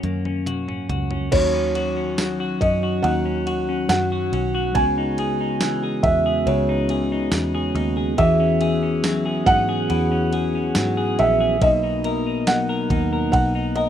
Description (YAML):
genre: dream pop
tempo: 70 BPM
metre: 4/4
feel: straight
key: unclear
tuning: A4 = 438 Hz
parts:
  - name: felt-muted upright piano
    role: melody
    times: 0.0-13.9 s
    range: A#4 to G#5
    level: -22 LUFS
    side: right 2 dB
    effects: ping-pong delay, plate reverb
  - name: mellow tonewheel organ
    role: sustained chords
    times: 0.0-13.9 s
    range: C#3 to G#4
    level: -24 LUFS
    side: equal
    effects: slow rotary speaker, plate reverb
  - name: clean electric guitar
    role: arpeggios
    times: 0.0-13.9 s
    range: F#2 to A#4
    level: -26 LUFS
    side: left 5 dB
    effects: wide subtle chorus, ping-pong delay, plate reverb
  - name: vintage muted picked electric bass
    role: bass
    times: 0.0-13.9 s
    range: A#1 to G#2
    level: -26 LUFS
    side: equal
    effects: none
  - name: crisp 8-bit digital drum machine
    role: drums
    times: 0.0-13.9 s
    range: crash cymbal, hi-hat, kick drum, ride cymbal, snare drum, tambourine, toms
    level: -25 LUFS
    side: equal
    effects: none
room: moderate studio reverb, RT60 0.5 s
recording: rough home demo mix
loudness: -18 LUFS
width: side -10 dB against mid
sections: 0.0-1.3 A section; 1.3-13.9 B section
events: drum fill 0.0-1.3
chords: 0.0 F#; 1.3 D#m7; 4.8 C#m9; 8.2 E69; 11.6 Bmaj7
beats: 0.47 | 1.33 2.19 3.04 3.90 | 4.76 5.61 6.47 7.33 | 8.19 9.04 9.90 10.76 | 11.61 12.47 13.33